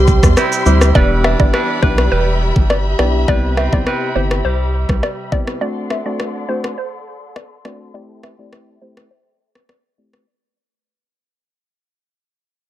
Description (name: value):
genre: dancehall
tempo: 103 BPM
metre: 4/4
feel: straight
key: E minor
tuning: A4 = 435 Hz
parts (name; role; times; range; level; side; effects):
- soft struck synth lead; second line; 0.0-0.6 s; G4; -20 LUFS; right 4 dB; chorus, digital delay
- warm studio string section; sustained chords; 0.0-10.2 s; G4 to C6; -25 LUFS; left 3 dB; sidechain pumping, low-pass filter
- clean electric guitar; arpeggios; 0.0-6.2 s; C3 to B4; -22 LUFS; right 5 dB; low-pass filter
- round analog bass; bass; 0.0-5.0 s; E1 to E2; -16 LUFS; equal; none
- afro-pop drum kit; drums; 0.1-10.3 s; kick drum, rim click, shaker; -16 LUFS; equal; overdrive
- percussive organ stab; accompaniment; 0.7-10.3 s; G3 to G4; -22 LUFS; left 2 dB; chorus, low-pass filter
- hollow square pluck; melody; 1.0-10.1 s; B4 to E5; -22 LUFS; equal; chorus, low-pass filter, digital delay
room: digital ambience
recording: none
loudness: -13 LUFS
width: side -13 dB against mid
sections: 1.0-10.3 A section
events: fade-out 1.0-10.3; filter sweep 1.0-10.3; break 9.1-10.3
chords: 0.0 C; 1.0 Em7; 3.3 Cmaj7; 5.6 D7; 7.9 Am7